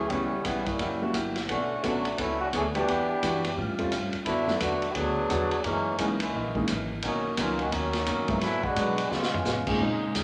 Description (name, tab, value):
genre	jazz, big band swing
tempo	173 BPM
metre	4/4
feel	swing 62% on 8ths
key	F# minor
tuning	A4 = 440 Hz
part	bright trombone section	second line	0.0-9.7 s	C#3 to G#4	-31 LUFS	equal	none
part	upright bass	bass	0.0-10.2 s	F#1 to C#3	-40 LUFS	equal	none
part	vintage hollow-body jazz guitar	accompaniment	0.1-10.2 s	F#2 to C#5	-36 LUFS	equal	none
part	warm grand piano	accompaniment	0.1-10.2 s	A#2 to G#4	-34 LUFS	equal	none
part	vintage drum kit	drums	0.1-10.2 s	crash cymbal, hi-hat, kick drum, ride cymbal, snare drum, toms	-36 LUFS	equal	none
part	warm trombone section	sustained chords	9.8-10.2 s	Db3 to Eb4	-33 LUFS	equal	none
room	wet large studio reverb, RT60 1.3 s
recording	none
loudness	-28 LUFS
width	mono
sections	0.0-9.8 A section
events	trombone section solo 0.0-9.8; drum fill 9.1-9.5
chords	0.1 C#m7b5; 0.8 F#7b9; 1.5 Bm9; 2.9 Em7; 3.6 A7alt; 4.3 D6; 5.6 F#13; 7.0 Bmaj9; 8.4 G#m7b5; 9.1 C#7